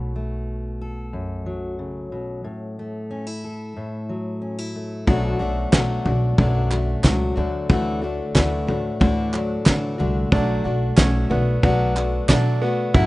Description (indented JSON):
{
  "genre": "indie folk with a building arrangement",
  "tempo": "91 BPM",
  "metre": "4/4",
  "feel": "straight",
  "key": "B minor",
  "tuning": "A4 = 436 Hz",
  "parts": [
    { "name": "fingerpicked steel-string acoustic guitar", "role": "accompaniment", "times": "0.0-12.6 s", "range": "F#2 to A4", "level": "-29 LUFS", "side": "left 1 dB", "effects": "none" },
    { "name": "upright bass", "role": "bass", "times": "0.0-13.1 s", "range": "A1 to D3", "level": "-24 LUFS", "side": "equal", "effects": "none" },
    { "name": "picked plugged-in steel-string acoustic guitar", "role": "accompaniment", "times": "5.1-13.1 s", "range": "A2 to F#4", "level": "-25 LUFS", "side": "left 3 dB", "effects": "none" },
    { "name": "cloth-damped thuddy drum kit", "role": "drums", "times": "5.1-13.1 s", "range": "kick drum, snare drum, toms", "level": "-17 LUFS", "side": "equal", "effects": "none" },
    { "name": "group handclap", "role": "percussion", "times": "5.7-12.4 s", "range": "none", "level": "-30 LUFS", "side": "right 2 dB", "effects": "none" },
    { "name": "bright upright piano", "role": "arpeggios", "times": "10.3-13.1 s", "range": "B3 to E4", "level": "-26 LUFS", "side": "right 3 dB", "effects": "none" }
  ],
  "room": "small room reverb",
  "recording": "rough home demo mix, nothing above 10.9 kHz",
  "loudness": "-19 LUFS",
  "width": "side -19 dB against mid",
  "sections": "0.0-5.1 A section; 5.1-13.1 B section",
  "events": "none",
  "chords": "0.0 B5; 2.4 F#m7/A; 5.1 Bm7; 7.4 Dadd9; 10.3 Bm7",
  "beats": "0.47 1.13 1.79 | 2.44 3.10 3.76 4.42 | 5.07 5.73 6.39 7.04 | 7.70 8.36 9.01 9.67 | 10.32 10.98 11.63 12.29 | 12.94"
}